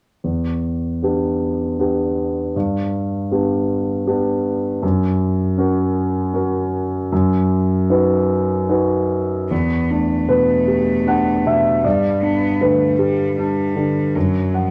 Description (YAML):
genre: neoclassical piano and strings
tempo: 78 BPM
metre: 3/4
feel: rubato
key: E minor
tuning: A4 = 444 Hz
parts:
  - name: warm concert grand piano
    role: accompaniment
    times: 0.2-14.7 s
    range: E2 to F#5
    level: -19 LUFS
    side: equal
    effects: none
  - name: rich cello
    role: second line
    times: 9.5-14.7 s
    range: F3 to B3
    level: -27 LUFS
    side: equal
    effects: none
room: moderate club reverb, RT60 0.8 s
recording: none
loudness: -19 LUFS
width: mono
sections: 0.2-9.5 A section; 9.5-14.7 B section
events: none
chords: 0.2 Em7; 2.5 G; 4.8 F#; 7.1 B/F#; 9.5 Em7; 11.8 G; 14.2 N.C.